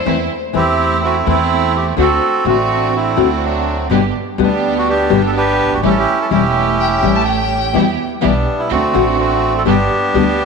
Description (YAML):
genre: tango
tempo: 125 BPM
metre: 4/4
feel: rubato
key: G major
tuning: A4 = 440 Hz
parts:
  - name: dark violin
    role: second line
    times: 0.0-0.4, 6.8-8.1 s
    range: C5 to A5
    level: -21 LUFS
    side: left 6 dB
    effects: slapback echo
  - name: rich studio string section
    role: stabs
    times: 0.0-10.4 s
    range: A3 to G4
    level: -21 LUFS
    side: right 11 dB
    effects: none
  - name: upright bass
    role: bass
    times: 0.0-10.4 s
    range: E1 to E2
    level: -21 LUFS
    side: right 2 dB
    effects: none
  - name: nylon-string guitar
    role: accompaniment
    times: 0.1-10.2 s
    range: B2 to G4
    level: -18 LUFS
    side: left 11 dB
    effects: none
  - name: bandoneon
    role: melody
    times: 0.6-10.4 s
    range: F#3 to B4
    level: -16 LUFS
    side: right 2 dB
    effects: none
room: moderate echo chamber reverb, RT60 2.1 s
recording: 1960s-style stereo with parts hard left and right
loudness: -12 LUFS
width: side -5 dB against mid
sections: 0.0-10.4 A section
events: none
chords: 0.1 Am/E; 2.0 D7; 3.9 G; 5.8 A7; 7.7 Em; 8.7 D7; 9.7 G